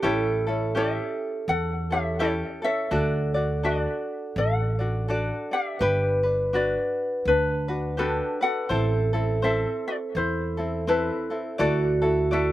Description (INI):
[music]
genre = Hawaiian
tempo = 83 BPM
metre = 4/4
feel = swing 60% on 8ths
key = unclear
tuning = A4 = 441 Hz
[part]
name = ukulele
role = melody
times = 0.0-12.5 s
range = D4 to F#5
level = -28 LUFS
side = left 2 dB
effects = slapback echo
[part]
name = vibraphone with soft mallets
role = second line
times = 0.0-12.5 s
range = F#4 to B4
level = -28 LUFS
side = right 2 dB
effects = slapback echo
[part]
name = tenor ukulele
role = accompaniment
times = 0.0-12.5 s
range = C4 to D5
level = -29 LUFS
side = left 2 dB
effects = slapback echo
[part]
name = upright bass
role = bass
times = 0.0-12.5 s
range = G1 to E2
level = -28 LUFS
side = equal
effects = none
[sound]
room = little or no reverb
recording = recorded outdoors, with no room sound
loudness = -23 LUFS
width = side -14 dB against mid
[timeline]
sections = 0.0-12.5 A section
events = none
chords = 0.0 A7; 2.9 D; 5.8 Gmaj7; 8.7 Am; 11.6 Dadd9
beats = | 0.03 0.75 1.47 2.20 | 2.92 3.64 4.36 5.08 | 5.81 6.53 7.25 7.97 | 8.70 9.42 10.14 10.87 | 11.59 12.31